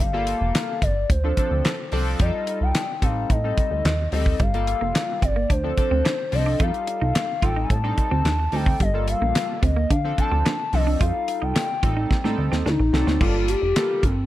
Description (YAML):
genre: early-eighties boogie funk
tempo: 109 BPM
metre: 4/4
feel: straight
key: G minor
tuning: A4 = 440 Hz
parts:
  - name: gliding portamento lead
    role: melody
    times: 0.0-14.3 s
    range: C4 to A5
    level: -26 LUFS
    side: left 2 dB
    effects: chorus
  - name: plucky analog bass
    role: bass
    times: 0.0-14.3 s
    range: F1 to D3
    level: -23 LUFS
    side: equal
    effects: none
  - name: damped 70s drum kit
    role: drums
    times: 0.0-14.2 s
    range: crash cymbal, handclaps, hi-hat, kick drum, snare drum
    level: -23 LUFS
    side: equal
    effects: gated reverb
  - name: chorused polysynth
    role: accompaniment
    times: 0.1-14.1 s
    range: F3 to A4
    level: -29 LUFS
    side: equal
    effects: none
  - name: semi-hollow electric guitar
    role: riff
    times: 4.4-13.2 s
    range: G3 to F4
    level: -30 LUFS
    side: right 5 dB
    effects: analog chorus
room: small room ambience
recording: none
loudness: -20 LUFS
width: side -14 dB against mid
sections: 0.0-13.2 A section; 13.2-14.3 B section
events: drum fill 12.1-13.2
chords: 0.0 Gm9; 1.1 Dm7; 2.2 F9; 3.0 Am7b5; 4.4 Gm9; 5.5 Dm7; 6.6 F9; 7.4 Am7b5; 8.8 Gm9; 9.9 Dm7; 11.0 F9; 11.8 Am7b5; 12.7 D7; 13.2 Gm9